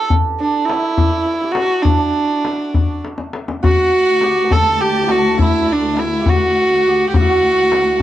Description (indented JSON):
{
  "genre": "Persian modal ensemble",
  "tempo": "68 BPM (dotted quarters)",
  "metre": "6/8",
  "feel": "straight",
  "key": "D dastgah mahur",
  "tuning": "A4 = 442 Hz",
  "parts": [
    { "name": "clear kamancheh", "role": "melody", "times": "0.0-8.0 s", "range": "D4 to A4", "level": "-15 LUFS", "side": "right 1 dB", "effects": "none" },
    { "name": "santur", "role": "second line", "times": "0.0-8.0 s", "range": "D4 to B4", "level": "-22 LUFS", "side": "right 5 dB", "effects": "none" },
    { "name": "tombak", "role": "percussion", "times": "0.1-8.0 s", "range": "none", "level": "-17 LUFS", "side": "left 3 dB", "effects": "none" },
    { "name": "warm studio violin section", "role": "second line", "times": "3.6-8.0 s", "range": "D5 to A5", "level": "-26 LUFS", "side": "left 4 dB", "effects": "none" },
    { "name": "warm chamber cello section", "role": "drone", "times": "3.6-8.0 s", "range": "D2", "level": "-24 LUFS", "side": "left 3 dB", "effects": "none" }
  ],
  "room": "moderate studio ambience, RT60 0.5 s",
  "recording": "dark, warm production",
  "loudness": "-13 LUFS",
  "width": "side -12 dB against mid",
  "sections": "0.0-3.6 A section; 3.6-8.0 B section",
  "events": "drum fill 3.0-3.6",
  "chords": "none",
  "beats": "| 0.11 0.99 | 1.86 2.74 | 3.62 4.50 | 5.38 6.26 | 7.14 8.02"
}